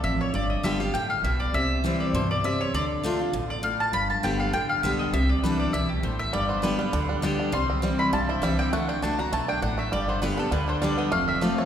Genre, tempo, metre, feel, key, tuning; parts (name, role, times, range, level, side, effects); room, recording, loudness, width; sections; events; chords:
bluegrass; 200 BPM; 4/4; swing 53% on 8ths; C major; A4 = 444 Hz
mandolin; melody; 0.0-11.7 s; G4 to C6; -28 LUFS; left 1 dB
picked steel-string acoustic guitar; accompaniment; 0.0-11.7 s; F2 to G4; -27 LUFS; left 1 dB
upright bass; bass; 0.0-11.5 s; F1 to G2; -30 LUFS; equal
bluegrass banjo; melody; 6.3-11.7 s; G3 to F4; -30 LUFS; right 4 dB
wet church reverb, RT60 2.8 s; recorded in a church or concert hall; -23 LUFS; side -9 dB against mid
0.0-11.7 A section
0.3 G; 1.5 C; 2.7 Dm; 3.9 Gadd9; 5.1 Cadd9; 6.3 G; 7.5 C; 8.7 D; 9.9 G; 11.1 F